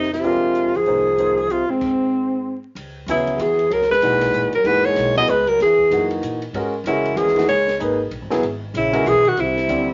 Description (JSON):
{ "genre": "modal jazz", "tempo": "190 BPM", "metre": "3/4", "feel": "swing 60% on 8ths", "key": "C# dorian", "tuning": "A4 = 439 Hz", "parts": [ { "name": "breathy alto saxophone", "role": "melody", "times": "0.0-9.9 s", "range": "C4 to D#5", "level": "-20 LUFS", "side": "equal", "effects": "none" }, { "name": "mellow trombone", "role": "second line", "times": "0.0-9.9 s", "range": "Ab2 to B3", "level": "-28 LUFS", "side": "equal", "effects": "none" }, { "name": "upright bass", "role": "bass", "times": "0.0-9.9 s", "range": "E1 to A#2", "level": "-34 LUFS", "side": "equal", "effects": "none" }, { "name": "compact cocktail drum kit", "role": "drums", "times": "0.0-9.8 s", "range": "crash cymbal, hi-hat, kick drum, ride cymbal, snare drum", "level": "-38 LUFS", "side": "equal", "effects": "none" }, { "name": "clear upright piano", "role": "accompaniment", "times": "0.2-9.9 s", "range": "A#2 to C5", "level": "-26 LUFS", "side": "equal", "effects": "none" } ], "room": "wet studio reverb, RT60 0.5 s", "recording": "vinyl crackle, nothing above 7.5 kHz", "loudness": "-19 LUFS", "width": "mono", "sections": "0.0-2.8 A section; 2.8-9.9 B section", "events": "stop 1.8-2.8", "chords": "0.0 Fm9; 1.8 N.C.; 2.8 C#m11; 9.4 C" }